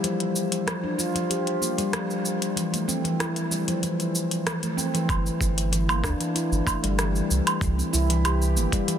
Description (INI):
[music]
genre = organic downtempo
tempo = 95 BPM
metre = 4/4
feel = straight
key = G dorian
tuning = A4 = 444 Hz
[part]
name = handpan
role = arpeggios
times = 0.0-9.0 s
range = E3 to G4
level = -25 LUFS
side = left 1 dB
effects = vintage 12-bit sampler grit, tape echo, shimmer reverb
[part]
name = organic electronic drum kit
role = drums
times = 0.0-9.0 s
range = hi-hat, rim click, shaker, woodblock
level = -29 LUFS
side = equal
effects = none
[part]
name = warm sub bass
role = bass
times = 5.1-8.7 s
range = G1 to D2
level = -24 LUFS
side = right 1 dB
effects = none
[part]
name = electronic kick drum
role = drums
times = 5.1-8.8 s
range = none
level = -27 LUFS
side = right 1 dB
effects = overdrive
[sound]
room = light reverb, digital ambience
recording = dense, heavily limited modern master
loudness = -22 LUFS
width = side -9 dB against mid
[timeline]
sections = 0.0-5.1 A section; 5.1-9.0 B section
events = none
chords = 0.0 Bb5 (rootless); 2.6 Fmaj7(no3) (rootless); 5.1 G5; 7.6 C